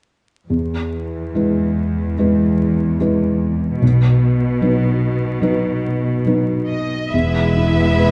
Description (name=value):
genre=cinematic, emotional film score for orchestra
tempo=67-76 BPM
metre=4/4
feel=rubato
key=E major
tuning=A4 = 440 Hz
part: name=felt-muted upright piano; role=accompaniment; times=0.5-8.1 s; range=B1 to B4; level=-20 LUFS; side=equal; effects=none
part: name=clear studio cello section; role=bass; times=0.5-8.1 s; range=E2 to B2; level=-22 LUFS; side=equal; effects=none
part: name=rich studio violin section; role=melody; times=6.7-8.1 s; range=D#5 to E5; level=-24 LUFS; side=equal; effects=none
part: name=rich studio violin section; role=second line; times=7.1-8.1 s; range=E4 to B4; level=-26 LUFS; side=equal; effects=none
part: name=rich studio viola section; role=accompaniment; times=7.1-8.1 s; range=G#3 to B3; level=-25 LUFS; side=equal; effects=none
part: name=rich studio double bass section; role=bass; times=7.1-8.1 s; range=E1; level=-23 LUFS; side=equal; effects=none
room=wet recital hall reverb, RT60 1.4 s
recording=dark, warm production, vinyl crackle, nothing above 10.3 kHz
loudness=-18 LUFS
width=mono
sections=0.5-7.1 A section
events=none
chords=0.5 E; 3.8 B; 7.1 E